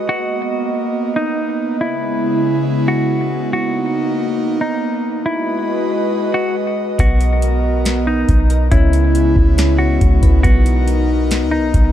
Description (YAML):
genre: hip hop, atmospheric cloud-rap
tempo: 139 BPM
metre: 4/4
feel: half-time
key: B major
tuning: A4 = 440 Hz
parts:
  - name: airy breathy pad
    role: sustained chords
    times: 0.0-11.9 s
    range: C#3 to D#5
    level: -18 LUFS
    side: right 1 dB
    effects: chorus, sidechain pumping
  - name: semi-hollow electric guitar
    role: melody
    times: 0.1-11.9 s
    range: D#4 to F#4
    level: -22 LUFS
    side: left 1 dB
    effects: harmonic tremolo, ping-pong delay
  - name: soft electric-piano-like synth keys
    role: arpeggios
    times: 7.0-11.9 s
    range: B3 to B4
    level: -25 LUFS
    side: left 5 dB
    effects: chorus, tremolo, ping-pong delay
  - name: soft 808-style bass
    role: bass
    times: 7.0-11.9 s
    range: B1 to C#2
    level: -14 LUFS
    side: equal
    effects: none
  - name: booming analog drum machine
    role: drums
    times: 7.0-11.9 s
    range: hi-hat, kick drum, snare drum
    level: -16 LUFS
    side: equal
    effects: none
room: little or no reverb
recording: dark, warm production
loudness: -14 LUFS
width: side -11 dB against mid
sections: 0.0-11.9 A section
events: none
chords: 0.1 Bmaj7; 1.8 C#m7; 3.5 Bmaj7; 5.3 G#m7; 7.0 Bmaj7; 8.7 C#m7; 10.4 Bmaj7